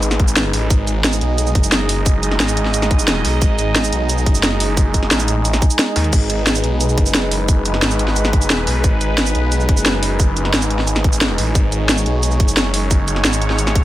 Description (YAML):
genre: dark technical drum and bass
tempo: 177 BPM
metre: 4/4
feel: straight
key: G# minor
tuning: A4 = 440 Hz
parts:
  - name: sweeping resonant pad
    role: sustained chords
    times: 0.0-13.8 s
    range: G#3 to D#5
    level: -22 LUFS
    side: right 1 dB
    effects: chorus, sidechain pumping
  - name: snarling distorted saw bass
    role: bass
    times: 0.0-13.8 s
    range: F#1 to D#2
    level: -19 LUFS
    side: equal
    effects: distortion, overdrive, sidechain pumping
  - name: drum and bass drum kit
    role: drums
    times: 0.0-13.8 s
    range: crash cymbal, hi-hat, shaker, snare drum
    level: -18 LUFS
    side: equal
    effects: small room ambience
  - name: electronic kick drum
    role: drums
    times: 0.2-13.8 s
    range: none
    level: -15 LUFS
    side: equal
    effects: small room ambience
room: digital ambience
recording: none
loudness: -14 LUFS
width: side -14 dB against mid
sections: 0.0-13.8 A section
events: none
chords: 0.0 G#m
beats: 0.03 0.37 | 0.70 1.04 1.38 1.72 | 2.06 2.40 2.74 3.08 | 3.42 3.75 4.09 4.43 | 4.77 5.11 5.45 5.79 | 6.13 6.47 6.81 7.14 | 7.48 7.82 8.16 8.50 | 8.84 9.18 9.52 9.86 | 10.20 10.54 10.87 11.21 | 11.55 11.89 12.23 12.57 | 12.91 13.25 13.59